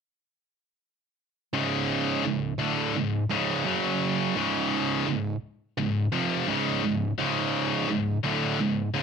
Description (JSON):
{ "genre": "metal", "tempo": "85 BPM", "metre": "4/4", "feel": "straight", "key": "unclear", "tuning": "A4 = 440 Hz", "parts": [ { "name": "heavy high-gain guitar", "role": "riff", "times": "1.5-9.0 s", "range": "C#2 to F#3", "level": "-27 LUFS", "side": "left 12 dB", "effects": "distortion" }, { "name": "heavy high-gain guitar", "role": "riff", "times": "1.5-9.0 s", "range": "C#2 to F#3", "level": "-27 LUFS", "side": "right 5 dB", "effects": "distortion" } ], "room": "light reverb", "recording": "dark, warm production", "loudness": "-24 LUFS", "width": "side -6 dB against mid", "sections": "1.5-9.0 A section", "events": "none", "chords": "1.5 C#5; 3.7 F#5; 4.4 C#" }